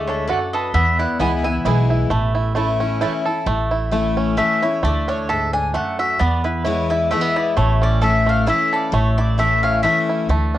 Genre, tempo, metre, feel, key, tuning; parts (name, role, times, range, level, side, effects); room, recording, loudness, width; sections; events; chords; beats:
bluegrass; 132 BPM; 3/4; swing 55% on 8ths; A major; A4 = 439 Hz
bluegrass banjo; melody; 0.0-10.6 s; A3 to A4; -23 LUFS; right 4 dB; cassette tape
mandolin; melody; 0.0-2.1, 4.4-10.0 s; B4 to G#5; -22 LUFS; left 1 dB; cassette tape, analog delay
lap resonator guitar; second line; 0.0-2.1 s; A4 to E5; -30 LUFS; left 7 dB; cassette tape
picked steel-string acoustic guitar; accompaniment; 0.0-10.6 s; E2 to E4; -23 LUFS; left 6 dB; cassette tape
upright bass; bass; 0.0-10.6 s; A1 to E2; -20 LUFS; right 1 dB
mandolin; stabs; 0.3-3.1 s; A3 to A5; -26 LUFS; right 10 dB; cassette tape
light reverb; home recording on cassette; -16 LUFS; side -13 dB against mid
0.0-3.5 A section; 3.5-10.6 B section
mandolin solo 3.5-10.6
0.0 D; 0.7 E; 2.1 A; 4.8 D; 6.2 E; 7.6 A
0.29 | 0.74 1.20 1.65 | 2.11 2.56 3.02 | 3.47 3.93 4.38 | 4.84 5.29 5.75 | 6.21 6.66 7.12 | 7.57 8.03 8.48 | 8.94 9.39 9.85 | 10.30